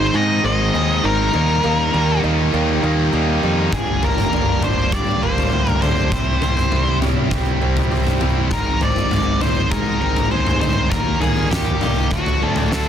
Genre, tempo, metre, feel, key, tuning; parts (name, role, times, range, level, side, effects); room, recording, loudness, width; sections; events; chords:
quiet-loud alternative rock; 100 BPM; 4/4; straight; A4 = 440 Hz
octave-fuzz lead guitar; melody; 0.0-12.9 s; F#4 to Eb5; -22 LUFS; left 1 dB; distortion, analog delay
picked swing-style acoustic guitar; arpeggios; 0.0-12.9 s; G2 to Ab4; -27 LUFS; right 6 dB
sludgy distorted guitar; riff; 0.0-12.9 s; G2 to E4; -22 LUFS; left 1 dB; overdrive
growling picked electric bass; bass; 0.0-12.9 s; G1 to Ab2; -23 LUFS; equal; overdrive
huge arena drum kit; drums; 3.7-12.9 s; kick drum, snare drum, toms; -20 LUFS; equal; soft clipping on snare
studio reverb; dense, heavily limited modern master; -16 LUFS; side -9 dB against mid
0.0-12.9 A section
drum fill 12.7
0.0 Ab; 1.3 Eb; 3.7 Gm; 6.1 C; 8.5 Ab; 10.9 Eb; 12.1 D